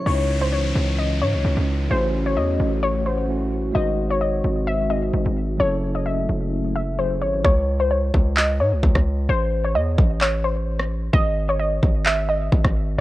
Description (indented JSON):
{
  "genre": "hip hop, trap",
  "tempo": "130 BPM",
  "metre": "4/4",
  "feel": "half-time",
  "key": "C# harmonic minor",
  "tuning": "A4 = 438 Hz",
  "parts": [
    { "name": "tine electric piano", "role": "accompaniment", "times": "0.0-7.5 s", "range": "C#3 to B#4", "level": "-28 LUFS", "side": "right 2 dB", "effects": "medium stereo tremolo" },
    { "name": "dark analog pad", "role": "sustained chords", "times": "0.0-7.4 s", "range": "C#3 to D#5", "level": "-30 LUFS", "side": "right 1 dB", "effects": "chorus, phaser" },
    { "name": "warbly dusty pluck", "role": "melody", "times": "0.1-12.9 s", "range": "B#4 to E5", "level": "-24 LUFS", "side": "left 2 dB", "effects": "chorus, tape echo" },
    { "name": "distorted 808-style bass", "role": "bass", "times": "0.1-13.0 s", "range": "F#1 to G#2", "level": "-22 LUFS", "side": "equal", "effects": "distortion" },
    { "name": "downlifter", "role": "sound effects", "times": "0.1-3.8 s", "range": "none", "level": "-34 LUFS", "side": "left 1 dB", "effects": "none" },
    { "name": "trap drum kit", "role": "drums", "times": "7.4-12.7 s", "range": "handclaps, kick drum, rim click", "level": "-19 LUFS", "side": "equal", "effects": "none" }
  ],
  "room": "little or no reverb",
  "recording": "worn, warbling old tape, cassette tape, warbly pitch drift",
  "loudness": "-18 LUFS",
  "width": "side -16 dB against mid",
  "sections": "0.1-7.4 A section; 7.4-13.0 B section",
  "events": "hi-hats muted 7.4-13.0",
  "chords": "0.1 C#madd9; 1.9 A6; 3.8 G#7; 5.6 F#m7; 7.4 C#5; 9.3 A5; 11.1 G#5",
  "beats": "| 0.06 0.52 0.98 1.44 | 1.91 2.37 2.83 3.29 | 3.75 4.21 4.67 5.14 | 5.60 6.06 6.52 6.98 | 7.44 7.91 8.37 8.83 | 9.29 9.75 10.21 10.68 | 11.14 11.60 12.06 12.52 | 12.98"
}